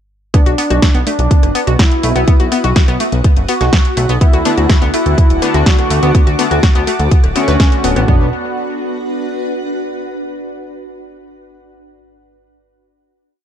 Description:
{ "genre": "melodic techno", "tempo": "124 BPM", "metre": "4/4", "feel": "straight", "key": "B minor", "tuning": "A4 = 440 Hz", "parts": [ { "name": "wide unison lead", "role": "melody", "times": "0.3-8.3 s", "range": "C#4 to F#4", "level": "-19 LUFS", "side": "equal", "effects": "ping-pong delay" }, { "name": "analog pluck", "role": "arpeggios", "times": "0.3-8.3 s", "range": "A3 to B4", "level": "-20 LUFS", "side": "left 2 dB", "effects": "chorus, sidechain pumping, ping-pong delay" }, { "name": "house drum kit", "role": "drums", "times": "0.3-8.2 s", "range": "kick drum, toms", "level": "-10 LUFS", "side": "equal", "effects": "none" }, { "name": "house drum kit", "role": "drums", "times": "0.3-8.1 s", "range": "hi-hat, rim click, snare drum", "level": "-20 LUFS", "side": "equal", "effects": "none" }, { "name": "granular cloud pad", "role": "texture", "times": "1.4-10.0 s", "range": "B3 to F#5", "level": "-23 LUFS", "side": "equal", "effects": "built-in reverb, sidechain pumping" }, { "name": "fat analog bass", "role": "bass", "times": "0.5-8.3 s", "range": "D1 to D2", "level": "-16 LUFS", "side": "equal", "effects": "tube saturation, sidechain pumping" }, { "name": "lush unison pad", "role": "sustained chords", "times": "4.2-8.3 s", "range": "D4 to D6", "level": "-24 LUFS", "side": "equal", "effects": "chorus, sidechain pumping" }, { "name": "sync-sweep polysynth", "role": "stabs", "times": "4.5-8.3 s", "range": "B2 to F#4", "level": "-22 LUFS", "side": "left 4 dB", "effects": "chorus, sidechain pumping, ping-pong delay" } ], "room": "little or no reverb", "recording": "dark, warm production", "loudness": "-10 LUFS", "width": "side -10 dB against mid", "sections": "0.3-8.1 drop; 8.1-10.0 final chord", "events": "drop 0.3-8.1", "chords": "0.3 Bm; 4.2 D; 8.1 Bm", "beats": "| 0.34 0.82 1.31 1.79 | 2.28 2.76 3.24 3.73 | 4.21 4.70 5.18 5.66 | 6.15 6.63 7.11 7.60 | 8.08 8.57 9.05 9.53" }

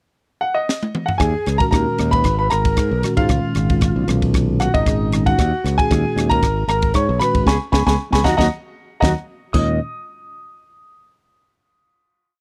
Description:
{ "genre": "electric jazz fusion", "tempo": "115 BPM", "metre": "4/4", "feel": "swing 54% on 16ths", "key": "Eb minor", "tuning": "A4 = 440 Hz", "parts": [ { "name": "clear grand piano", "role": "melody", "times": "0.4-9.8 s", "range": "Eb5 to Eb6", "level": "-24 LUFS", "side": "equal", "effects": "slapback echo" }, { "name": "crisp fusion drum kit", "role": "drums", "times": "0.7-9.7 s", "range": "crash cymbal, kick drum, ride cymbal, rim click, snare drum, toms", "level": "-22 LUFS", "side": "equal", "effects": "none" }, { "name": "breathy mellow jazz flute", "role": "second line", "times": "1.2-9.8 s", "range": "Eb4 to Eb5", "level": "-28 LUFS", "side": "equal", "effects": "none" }, { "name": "modern bright fingered electric bass", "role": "bass", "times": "1.2-9.8 s", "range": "Ab1 to Ab2", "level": "-22 LUFS", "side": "equal", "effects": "none" }, { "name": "mellow tine electric piano", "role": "accompaniment", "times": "1.6-9.8 s", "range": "Bb2 to Ab4", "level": "-24 LUFS", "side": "equal", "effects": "none" } ], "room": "small room ambience", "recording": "dry, close 1970s-style studio recording", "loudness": "-18 LUFS", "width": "mono", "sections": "0.0-1.2 pickup bar; 1.2-9.5 A section; 9.5-11.6 final chord", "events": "drum fill 0.7-1.2, 8.5-9.5; band accent 7.5-9.5", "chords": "0.0 N.C.; 1.2 Ebm7; 2.3 Abm11; 3.3 Db7; 5.4 Ebm7; 6.4 Abm11; 7.5 Db5; 8.2 Ebm; 9.5 Ebsus2", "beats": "0.16 0.69 | 1.21 1.73 2.25 2.78 | 3.30 3.82 4.35 4.87 | 5.39 5.91 6.43 6.95 | 7.47 7.99 8.51 9.03 | 9.54" }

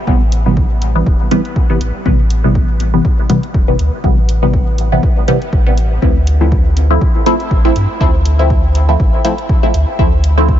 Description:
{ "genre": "dub techno", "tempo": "121 BPM", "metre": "4/4", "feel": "swing 55% on 16ths", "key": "D minor", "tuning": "A4 = 439 Hz", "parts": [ { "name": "filtered dub chord stab", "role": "stabs", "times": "0.1-10.6 s", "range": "C3 to E4", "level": "-15 LUFS", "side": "equal", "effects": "phaser, sidechain pumping, dub echo" }, { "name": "warm sub bass", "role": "bass", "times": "0.1-10.6 s", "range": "E1 to G2", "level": "-14 LUFS", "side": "equal", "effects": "sidechain pumping" }, { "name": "electronic kick drum", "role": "drums", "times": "0.1-10.6 s", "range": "none", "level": "-14 LUFS", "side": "equal", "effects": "none" }, { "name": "electronic hi-hat", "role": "drums", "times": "0.3-10.3 s", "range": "none", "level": "-28 LUFS", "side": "right 2 dB", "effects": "overdrive" } ], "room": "light reverb, digital ambience", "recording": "nothing above 7.6 kHz", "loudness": "-10 LUFS", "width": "side -11 dB against mid", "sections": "0.0-10.6 A section", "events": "none", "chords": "0.0 Am9; 6.0 Dm9", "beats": "| 0.07 0.57 1.06 1.56 | 2.06 2.55 3.05 3.54 | 4.04 4.54 5.03 5.53 | 6.02 6.52 7.01 7.51 | 8.01 8.50 9.00 9.49 | 9.99 10.49" }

